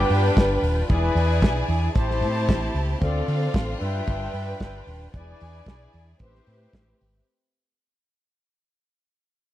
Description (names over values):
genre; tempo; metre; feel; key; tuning
disco; 113 BPM; 4/4; straight; unclear; A4 = 440 Hz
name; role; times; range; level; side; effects
dark studio violin section; second line; 0.0-7.2 s; C4 to A5; -27 LUFS; right 1 dB; none
bright studio string section; sustained chords; 0.0-7.2 s; D3 to B4; -34 LUFS; left 1 dB; none
mellow horn section; stabs; 0.0-7.0 s; B3 to E5; -30 LUFS; left 5 dB; none
fingered electric bass; bass; 0.0-7.2 s; Eb1 to D3; -24 LUFS; equal; none
warm soul drum kit; drums; 0.1-7.1 s; hi-hat, kick drum, snare drum; -21 LUFS; equal; none
room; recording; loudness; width
little or no reverb; dry, close 1970s-style studio recording; -20 LUFS; side -14 dB against mid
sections
0.0-7.3 A section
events
fade-out 0.0-7.3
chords
0.0 G7; 0.9 E7; 2.0 Am7; 3.0 Dm7; 3.8 G7; 5.1 E7; 6.2 Am9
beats
0.37 | 0.90 1.43 1.96 2.49 | 3.02 3.55 4.08 4.61 | 5.14 5.67 6.20 6.73